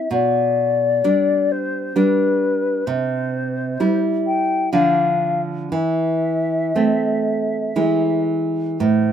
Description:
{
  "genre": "romantic duo for flute and classical guitar",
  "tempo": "57-66 BPM",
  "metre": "3/4",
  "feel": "rubato",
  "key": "A minor",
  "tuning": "A4 = 435 Hz",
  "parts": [
    { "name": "mellow hollow silver concert flute", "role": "melody", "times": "0.0-9.1 s", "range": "B4 to G5", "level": "-20 LUFS", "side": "left 4 dB", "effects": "none" },
    { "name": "nylon-string guitar", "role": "accompaniment", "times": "0.0-9.1 s", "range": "A2 to E4", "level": "-19 LUFS", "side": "right 2 dB", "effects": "none" }
  ],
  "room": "moderate studio reverb, RT60 0.6 s",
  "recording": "rough home demo mix",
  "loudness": "-17 LUFS",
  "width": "side -9 dB against mid",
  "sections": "0.0-9.1 A section",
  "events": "none",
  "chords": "0.1 G/B; 2.9 C; 4.7 Dm; 5.7 Am/E; 7.8 E"
}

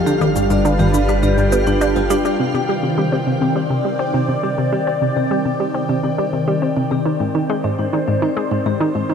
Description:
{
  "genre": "ambient, sequencer-driven space music",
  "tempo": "103 BPM",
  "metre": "4/4",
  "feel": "straight",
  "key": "C minor",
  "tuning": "A4 = 444 Hz",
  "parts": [
    { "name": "phased analog pad", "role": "sustained chords", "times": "0.0-9.1 s", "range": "C3 to G5", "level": "-20 LUFS", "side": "equal", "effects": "phaser, chorus" },
    { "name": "round analog bass", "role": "bass", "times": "0.0-2.4 s", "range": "G1", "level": "-22 LUFS", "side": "equal", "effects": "none" },
    { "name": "twinkling granular texture", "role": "texture", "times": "0.0-2.4 s", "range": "F4 to F5", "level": "-31 LUFS", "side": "right 2 dB", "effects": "built-in reverb" },
    { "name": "vibraphone with medium mallets", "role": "arpeggios", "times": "0.1-9.1 s", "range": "G3 to D5", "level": "-24 LUFS", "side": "moving between left 7 dB and equal", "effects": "auto-pan, ping-pong delay" },
    { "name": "analog pluck", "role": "riff", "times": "0.1-9.1 s", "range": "G2 to D4", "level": "-19 LUFS", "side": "equal", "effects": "chorus, ping-pong delay" },
    { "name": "electronic cabasa and toms", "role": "percussion", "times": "0.1-2.4 s", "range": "none", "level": "-24 LUFS", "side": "right 1 dB", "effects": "overdrive, ping-pong delay" }
  ],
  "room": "moderate huge ambient reverb, RT60 9.2 s",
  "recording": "dark, warm production",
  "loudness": "-16 LUFS",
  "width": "side -7 dB against mid",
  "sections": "0.0-2.4 A section; 2.4-9.1 B section",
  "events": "fade-in on vibraphone 2.4-9.1",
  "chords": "0.1 G7; 2.4 Cmadd9; 7.1 Ab"
}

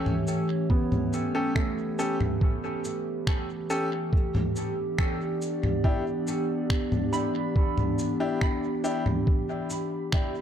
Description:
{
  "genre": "ambient dub",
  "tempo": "70 BPM",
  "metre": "4/4",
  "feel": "straight",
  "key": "A mixolydian",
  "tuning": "A4 = 439 Hz",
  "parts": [
    { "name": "warbly tape-like pad", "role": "sustained chords", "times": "0.0-10.4 s", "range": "E3 to D5", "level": "-29 LUFS", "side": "equal", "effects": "chorus, built-in reverb" },
    { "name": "bright upright piano", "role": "stabs", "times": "0.0-9.0 s", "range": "C#4 to A4", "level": "-33 LUFS", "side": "left 2 dB", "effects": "dub echo" },
    { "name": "electronic congas, cabasa and finger snaps", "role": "drums", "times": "0.1-10.3 s", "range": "none", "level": "-31 LUFS", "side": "equal", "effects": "none" },
    { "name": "felt-muted upright piano", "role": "arpeggios", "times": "0.7-10.4 s", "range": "A3 to B5", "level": "-36 LUFS", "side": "right 5 dB", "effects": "dub echo" },
    { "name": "electronic kick drum", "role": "drums", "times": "0.7-10.3 s", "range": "none", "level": "-24 LUFS", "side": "equal", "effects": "none" }
  ],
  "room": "light reverb",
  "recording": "none",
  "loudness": "-25 LUFS",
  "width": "side -9 dB against mid",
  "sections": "0.0-10.4 A section",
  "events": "none",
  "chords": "0.0 A7; 4.1 Em7"
}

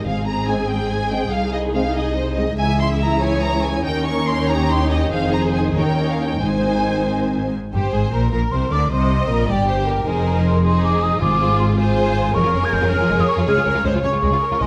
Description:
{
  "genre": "classical, dramatic, fast romantic movement for symphony orchestra",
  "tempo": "90-108 BPM (dotted quarters)",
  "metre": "6/8",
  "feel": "rubato",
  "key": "Ab major",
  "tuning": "A4 = 440 Hz",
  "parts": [
    { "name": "warm symphonic violin section", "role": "melody", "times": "0.0-14.7 s", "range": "G4 to Db6", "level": "-29 LUFS", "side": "equal", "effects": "none" },
    { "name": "warm symphonic violin section", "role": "second line", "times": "0.0-14.7 s", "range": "Ab3 to Fb5", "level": "-29 LUFS", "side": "equal", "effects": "none" },
    { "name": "clear symphonic viola section", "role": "accompaniment", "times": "0.1-14.7 s", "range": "C4 to Eb5", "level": "-28 LUFS", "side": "equal", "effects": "none" },
    { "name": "rich symphonic cello section", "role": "bass", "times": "0.1-14.6 s", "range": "C2 to D3", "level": "-26 LUFS", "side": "equal", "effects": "none" },
    { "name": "rich symphonic double bass section", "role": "bass", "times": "0.1-14.6 s", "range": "F1 to Eb2", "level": "-25 LUFS", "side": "equal", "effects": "none" },
    { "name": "timpani", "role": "percussion", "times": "0.1-0.7, 6.4-7.1, 11.2-11.7 s", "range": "Ab2", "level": "-31 LUFS", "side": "equal", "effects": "none" },
    { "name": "dark French horn section", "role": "sustained chords", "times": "0.5-7.5 s", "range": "Eb3 to Db4", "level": "-27 LUFS", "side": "equal", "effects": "none" },
    { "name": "mellow hollow concert flute", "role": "second line", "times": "7.7-14.7 s", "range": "G5 to Ab6", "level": "-24 LUFS", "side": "equal", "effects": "none" }
  ],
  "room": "moderate recital hall reverb, RT60 1.6 s",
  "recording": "vinyl crackle",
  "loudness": "-19 LUFS",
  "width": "mono",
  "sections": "0.0-7.7 A section; 7.7-14.7 B section",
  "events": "none",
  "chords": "0.1 Ab; 1.3 Ab/C; 2.6 Dbm; 3.9 Eb7; 5.1 Fm7; 5.8 Eb7; 6.4 Ab; 7.7 Bb13; 8.9 Eb; 10.1 Fm7; 11.2 Fm/Ab; 12.3 Db/F; 13.5 Db"
}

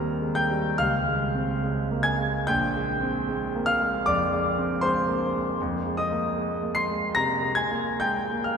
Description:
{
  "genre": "classical, impressionist solo piano",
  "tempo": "63-81 BPM",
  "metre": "4/4",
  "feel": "rubato",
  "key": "unclear",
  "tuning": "A4 = 440 Hz",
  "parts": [
    { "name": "clear concert grand piano", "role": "solo", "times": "0.0-8.6 s", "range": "Bb1 to C7", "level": "-23 LUFS", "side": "equal", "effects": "none" }
  ],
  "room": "wet cathedral reverb, RT60 4.2 s",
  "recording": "none",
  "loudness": "-23 LUFS",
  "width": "side -6 dB against mid",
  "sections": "0.0-8.6 A section",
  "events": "none",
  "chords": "0.0 Eb6; 0.8 Dbmaj7; 2.5 Bb13; 5.6 Fm11"
}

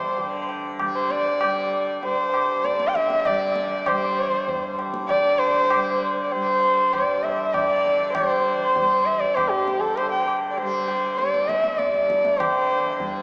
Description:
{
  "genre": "indian classical, Hindustani",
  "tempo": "98 BPM",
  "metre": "7/4",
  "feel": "straight",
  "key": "unclear",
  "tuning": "A4 = 436 Hz",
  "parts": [
    { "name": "dark sarangi", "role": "melody", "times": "0.0-13.2 s", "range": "G4 to G5", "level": "-24 LUFS", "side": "equal", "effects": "none" },
    { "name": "hand-pumped harmonium", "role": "second line", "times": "0.0-10.4 s", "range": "A4 to G5", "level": "-34 LUFS", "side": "equal", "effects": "none" },
    { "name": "tanpura", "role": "drone", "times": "0.0-13.2 s", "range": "G2 to G3", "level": "-36 LUFS", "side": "equal", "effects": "none" },
    { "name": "tabla", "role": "percussion", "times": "0.2-13.2 s", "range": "none", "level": "-31 LUFS", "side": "equal", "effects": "none" }
  ],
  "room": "wet church reverb, RT60 3.0 s",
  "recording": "recorded in a church or concert hall, small speaker sound",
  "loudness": "-22 LUFS",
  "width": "mono",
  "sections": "0.0-12.4 A section",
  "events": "none",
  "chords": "none"
}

